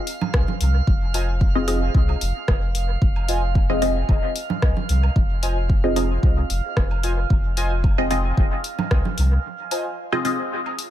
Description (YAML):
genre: dub techno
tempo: 112 BPM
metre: 4/4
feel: swing 54% on 16ths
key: F minor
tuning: A4 = 441 Hz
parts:
  - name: drifting glass-harmonics texture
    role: texture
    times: 0.0-10.9 s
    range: F5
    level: -32 LUFS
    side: right 9 dB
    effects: chorus, built-in reverb, sidechain pumping
  - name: deep house drum kit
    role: drums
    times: 0.1-10.9 s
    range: hi-hat, rim click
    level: -29 LUFS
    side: left 2 dB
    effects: overdrive, dub echo
  - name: congas and woodblock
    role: percussion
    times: 0.2-10.8 s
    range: none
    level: -31 LUFS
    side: right 6 dB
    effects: overdrive, sidechain pumping on perc, dub echo
  - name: soft dub sub bass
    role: bass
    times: 0.3-9.4 s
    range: F1 to C2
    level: -22 LUFS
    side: equal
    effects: tube saturation, sidechain pumping
  - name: electronic kick drum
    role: drums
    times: 0.3-9.0 s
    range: none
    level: -19 LUFS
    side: equal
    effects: overdrive
  - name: warbly lo-fi synth keys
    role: riff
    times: 1.1-9.9 s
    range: F4 to Ab5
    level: -31 LUFS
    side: left 1 dB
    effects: chorus, phaser, sidechain pumping, dub echo
  - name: filtered dub chord stab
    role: stabs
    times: 1.6-10.4 s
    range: C4 to Eb5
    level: -25 LUFS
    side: left 1 dB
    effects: phaser, sidechain pumping, dub echo
room: little or no reverb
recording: none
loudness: -18 LUFS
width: side -12 dB against mid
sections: 0.0-10.9 A section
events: break 9.4-10.9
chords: 0.0 Fm7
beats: 0.34 | 0.87 1.41 1.95 2.48 | 3.02 3.55 4.09 4.62 | 5.16 5.70 6.23 6.77 | 7.30 7.84 8.37 8.91 | 9.45 9.98 10.52